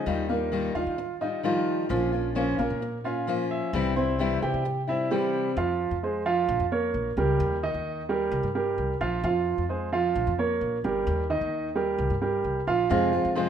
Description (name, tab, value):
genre	latin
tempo	131 BPM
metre	4/4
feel	straight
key	F minor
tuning	A4 = 442 Hz
part	fingerpicked steel-string acoustic guitar	accompaniment	0.0-5.6, 12.9-13.5 s	C3 to F4	-28 LUFS	left 5 dB	none
part	warm grand piano	arpeggios	0.0-13.5 s	Eb3 to G5	-26 LUFS	right 4 dB	none
part	upright bass	bass	0.1-13.5 s	G1 to Eb3	-32 LUFS	left 1 dB	none
room	moderate large studio reverb, RT60 1.2 s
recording	minimal, uncompressed stereo recording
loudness	-24 LUFS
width	side -8 dB against mid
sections	0.0-5.6 A section; 5.6-13.5 B section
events	none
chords	0.1 Ebadd9; 1.9 Bbm; 3.7 C; 5.6 Fm; 6.5 Bbm; 7.4 Eb; 8.3 C5; 9.2 Fm; 10.2 Bbm; 11.1 Eb; 12.0 C5; 12.9 Fm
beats	| 0.06 0.52 0.98 1.44 | 1.90 2.36 2.82 3.27 | 3.73 4.19 4.65 5.11 | 5.57 6.03 6.49 6.94 | 7.40 7.86 8.32 8.78 | 9.23 9.69 10.15 10.61 | 11.07 11.53 11.98 12.44 | 12.90 13.36